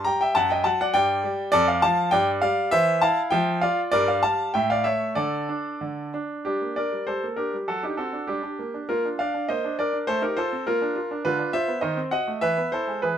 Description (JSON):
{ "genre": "classical-period piano sonatina", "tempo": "100 BPM", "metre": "2/4", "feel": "rubato", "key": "D minor, G minor from 6.4 s", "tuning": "A4 = 440 Hz", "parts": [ { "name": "bright concert grand piano", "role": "solo", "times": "0.0-13.2 s", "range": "F2 to Bb5", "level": "-22 LUFS", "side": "equal", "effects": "none" } ], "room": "light reverb", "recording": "minimal, uncompressed stereo recording", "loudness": "-22 LUFS", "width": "side -9 dB against mid", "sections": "0.0-6.4 A section; 6.4-13.2 B section", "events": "none", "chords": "0.3 D/F#; 0.9 G5; 1.5 Dm/F; 2.1 G5; 2.7 C/E; 3.3 Dmadd9/F; 3.9 Gm; 4.5 A; 5.2 D5; 6.4 Gm; 7.7 D7/F#; 8.3 Gm; 8.9 Bb; 10.1 F7/A; 10.7 Bb; 11.2 Bdim/D; 11.8 D#dim7; 12.4 E", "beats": "| 0.35 0.94 | 1.53 2.12 | 2.71 3.31 | 3.92 4.54 | 5.17 5.81 | 6.45 7.07 | 7.67 8.27 | 8.88 9.48 | 10.07 10.66 | 11.24 11.83 | 12.43 13.03" }